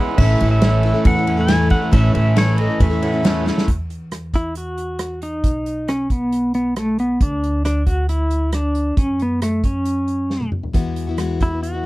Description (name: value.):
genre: folk rock and heartland rock.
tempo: 136 BPM.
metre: 4/4.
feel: straight.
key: unclear.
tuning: A4 = 436 Hz.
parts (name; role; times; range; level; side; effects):
picked plugged-in steel-string acoustic guitar; accompaniment; 0.0-3.7, 10.7-11.9 s; A2 to A4; -24 LUFS; left 6 dB; none.
reed electric piano; accompaniment; 0.0-3.7 s; E4 to F#5; -31 LUFS; right 6 dB; overdrive.
pedal harmonium; sustained chords; 0.0-3.6 s; E3 to A4; -30 LUFS; right 2 dB; none.
electric guitar at the edge of break-up; riff; 0.0-3.7 s; A2 to E4; -21 LUFS; right 3 dB; none.
pedal steel guitar; melody; 0.2-11.9 s; A3 to G#5; -21 LUFS; equal; none.
upright bass; bass; 0.2-11.9 s; A1 to F#2; -21 LUFS; equal; none.
unplugged drum kit; drums; 0.2-11.7 s; crash cymbal, hi-hat, kick drum, ride cymbal, rim click, snare drum, toms; -19 LUFS; equal; none.
room: light reverb.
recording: dry, close 1970s-style studio recording.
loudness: -16 LUFS.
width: side -18 dB against mid.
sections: 0.0-3.7 A section; 3.7-11.9 B section.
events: drum fill 3.5, 10.3-10.7.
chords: 0.2 A; 3.7 Esus2; 5.4 B; 7.2 Dsus2; 9.0 F#5; 10.7 Eadd9.